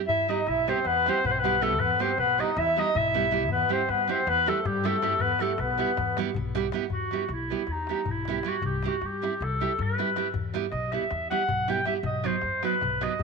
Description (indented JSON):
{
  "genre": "balkan folk, Balkan wedding band",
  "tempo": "316 BPM (eighths)",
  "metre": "9/8",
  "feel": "straight",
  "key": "E harmonic minor",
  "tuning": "A4 = 440 Hz",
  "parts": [
    { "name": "upright bass", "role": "bass", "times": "0.0-13.2 s", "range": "B1 to G2", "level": "-34 LUFS", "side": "left 1 dB", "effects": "none" },
    { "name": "clear clarinet", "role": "melody", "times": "0.1-13.2 s", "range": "D#4 to G5", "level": "-26 LUFS", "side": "left 2 dB", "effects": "slapback echo" },
    { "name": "mellow accordion", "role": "second line", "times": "0.1-6.2 s", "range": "G3 to E4", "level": "-30 LUFS", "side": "left 1 dB", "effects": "none" },
    { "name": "darbuka", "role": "percussion", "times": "0.1-13.2 s", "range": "none", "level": "-35 LUFS", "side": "left 7 dB", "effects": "none" },
    { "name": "nylon-string guitar", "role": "accompaniment", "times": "0.3-13.1 s", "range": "F#3 to G4", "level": "-31 LUFS", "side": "right 11 dB", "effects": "none" }
  ],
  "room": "light reverb, small room ambience",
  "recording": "1960s-style stereo with parts hard left and right",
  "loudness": "-24 LUFS",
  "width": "side -4 dB against mid",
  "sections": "0.0-6.9 A section; 6.9-13.2 B section",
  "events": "clarinet solo 6.9-13.2",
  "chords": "0.1 Em; 3.5 C/E; 5.2 Em; 8.6 C; 10.3 Em; 12.0 B"
}